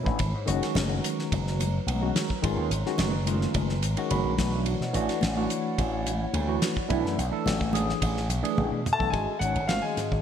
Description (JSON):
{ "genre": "electric jazz fusion", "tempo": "108 BPM", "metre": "4/4", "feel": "straight", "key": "unclear", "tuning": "A4 = 440 Hz", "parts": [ { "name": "tine electric piano", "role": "accompaniment", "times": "0.0-10.2 s", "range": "D#3 to B5", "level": "-30 LUFS", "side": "right 1 dB", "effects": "medium stereo tremolo, phaser" }, { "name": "warbly tape-like pad", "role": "sustained chords", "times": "0.0-9.1 s", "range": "F#3 to B5", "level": "-37 LUFS", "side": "equal", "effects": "chorus, built-in reverb" }, { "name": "slap bass with an envelope filter", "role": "bass", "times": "0.1-10.2 s", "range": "F#1 to B2", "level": "-28 LUFS", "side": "equal", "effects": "none" }, { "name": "damped 70s drum kit", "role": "drums", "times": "0.1-10.2 s", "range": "hi-hat, kick drum, ride cymbal, snare drum, toms", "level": "-31 LUFS", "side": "equal", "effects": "gated reverb" }, { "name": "congas", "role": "percussion", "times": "0.2-10.0 s", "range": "none", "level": "-35 LUFS", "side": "left 4 dB", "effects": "none" }, { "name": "clear baby grand piano", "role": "melody", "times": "8.9-10.2 s", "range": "E#5 to A5", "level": "-28 LUFS", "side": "left 3 dB", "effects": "none" }, { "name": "trombone with cup mute", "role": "second line", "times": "8.9-10.2 s", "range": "E#3 to A3", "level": "-33 LUFS", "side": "left 3 dB", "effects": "digital delay" } ], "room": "moderate lush hall reverb, RT60 2.0 s", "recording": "bright 1980s-style digital production", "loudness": "-24 LUFS", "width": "side -8 dB against mid", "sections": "0.0-9.1 A section; 9.1-10.2 B section", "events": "drum fill 0.0, 8.6-9.1; tine electric piano fill 3.8-4.7", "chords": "0.2 G#m11; 4.4 Bm11; 9.1 D#m9/G#", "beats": "| 0.20 0.75 1.31 1.87 | 2.43 2.99 3.54 4.10 | 4.66 5.22 5.78 6.34 | 6.89 7.45 8.01 8.57 | 9.13 9.69" }